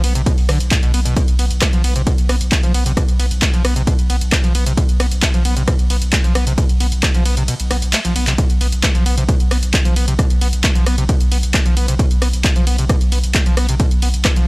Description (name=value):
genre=driving peak-time techno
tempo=133 BPM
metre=4/4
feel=straight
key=unclear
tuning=A4 = 439 Hz
part: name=screaming distorted acid line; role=riff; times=0.0-14.5 s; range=A2 to B3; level=-23 LUFS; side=equal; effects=distortion, analog chorus, sidechain pumping, tape echo
part: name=saturated sub bass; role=bass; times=0.0-14.5 s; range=B1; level=-19 LUFS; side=equal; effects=overdrive, sidechain pumping, low-pass filter
part: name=punchy analog drum machine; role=drums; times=0.0-14.5 s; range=handclaps, hi-hat, ride cymbal, rim click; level=-21 LUFS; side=equal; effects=none
part: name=electronic kick drum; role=drums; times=0.3-14.3 s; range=none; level=-15 LUFS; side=equal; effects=none
room=little or no reverb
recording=dry, gritty hardware recording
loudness=-13 LUFS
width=side -24 dB against mid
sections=0.0-14.5 A section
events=kick drops out 7.5-8.4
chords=none